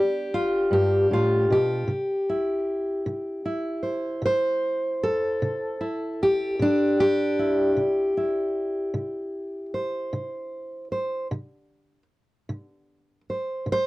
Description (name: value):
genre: acoustic country blues, solo or duo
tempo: 51 BPM (dotted quarters)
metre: 12/8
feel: straight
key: unclear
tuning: A4 = 441 Hz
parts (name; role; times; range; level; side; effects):
- fingerpicked steel-string acoustic guitar; solo; 0.0-13.9 s; G2 to C5; -23 LUFS; equal; none
room: light reverb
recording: dry, close 1970s-style studio recording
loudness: -23 LUFS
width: side -19 dB against mid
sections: 0.0-13.9 A section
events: none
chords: 0.0 G7; 1.9 C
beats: 0.70 | 1.88 3.06 4.24 5.41 | 6.59 7.77 8.95 10.13 | 11.32 12.50 13.68